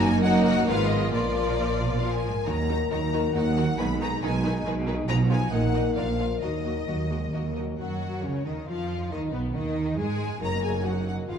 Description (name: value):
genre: classical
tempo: 136 BPM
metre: 3/4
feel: rubato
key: Eb minor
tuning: A4 = 440 Hz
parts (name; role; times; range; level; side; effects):
- warm symphonic violin section; melody; 0.0-11.4 s; Cb5 to Cb6; -33 LUFS; left 3 dB; none
- rich symphonic violin section; second line; 0.0-11.4 s; Cb4 to Eb5; -37 LUFS; left 3 dB; none
- warm studio viola section; accompaniment; 0.0-11.4 s; Db3 to Gb4; -32 LUFS; right 2 dB; none
- mellow French horn section; sustained chords; 0.0-11.4 s; Eb3 to Bb4; -32 LUFS; left 1 dB; none
- concert harp; arpeggios; 0.0-11.4 s; Gb2 to Eb5; -33 LUFS; left 12 dB; none
- rich symphonic cello section; bass; 0.0-11.4 s; Eb2 to Ab3; -29 LUFS; right 3 dB; none
- rich symphonic double bass section; bass; 0.0-11.4 s; Gb1 to Ab2; -30 LUFS; right 3 dB; none
- timpani; percussion; 2.5-3.1, 6.4-7.7 s; Eb3; -38 LUFS; equal; none
room: wet scoring stage reverb, RT60 1.7 s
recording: dark, warm production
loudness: -23 LUFS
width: side -7 dB against mid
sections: 0.0-7.8 A section; 7.8-11.4 B section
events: timpani fill 6.4-7.8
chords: 0.0 Ebm/Gb; 0.7 Fdim/Ab; 1.1 Bb; 2.5 Ebm; 3.8 Abm/Cb; 5.1 Fm7b5/Cb; 5.5 Ebm/Bb; 6.0 Bb; 6.4 Ebm; 9.1 Abm7; 10.4 Ebm/Gb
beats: 0.24 0.68 | 1.12 1.57 2.02 | 2.47 2.91 3.35 | 3.79 4.23 4.66 | 5.08 5.52 5.96 | 6.41 6.87 7.33 | 7.79 8.24 8.68 | 9.12 9.55 9.98 | 10.41 10.85 11.29